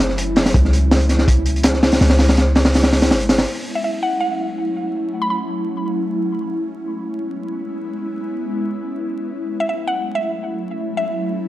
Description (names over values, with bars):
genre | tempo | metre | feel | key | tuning
drum and bass, jungle | 164 BPM | 4/4 | straight | F# minor | A4 = 439 Hz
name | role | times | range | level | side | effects
ethereal airy pad | sustained chords | 0.0-11.5 s | F#3 to E4 | -23 LUFS | equal | ensemble chorus, built-in reverb, vintage 12-bit sampler grit
warm 808-style bass | bass | 0.0-3.5 s | F#1 to C#2 | -17 LUFS | equal | none
crunchy breakbeat drum kit | drums | 0.1-3.5 s | hi-hat, kick drum, snare drum | -15 LUFS | equal | none
mallet-like synth pluck | melody | 3.8-5.4, 9.6-11.3 s | E5 to B5 | -24 LUFS | equal | chorus, dub echo
room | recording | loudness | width
moderate lush hall reverb, RT60 1.7 s, small room ambience | dry, gritty hardware recording, vinyl crackle | -16 LUFS | side -15 dB against mid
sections
0.0-3.5 A section; 3.5-11.5 B section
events
none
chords
0.0 F#m7; 0.5 C#m7; 3.5 F#m7; 6.4 C#m7; 9.3 F#m7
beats
0.18 | 0.55 0.91 1.28 1.64 | 2.01 2.38 2.74 3.11 | 3.47 3.84 4.21 4.57 | 4.94 5.30 5.67 6.03 | 6.40 6.77 7.13 7.50 | 7.86 8.23 8.60 8.96 | 9.33 9.69 10.06 10.43 | 10.79 11.16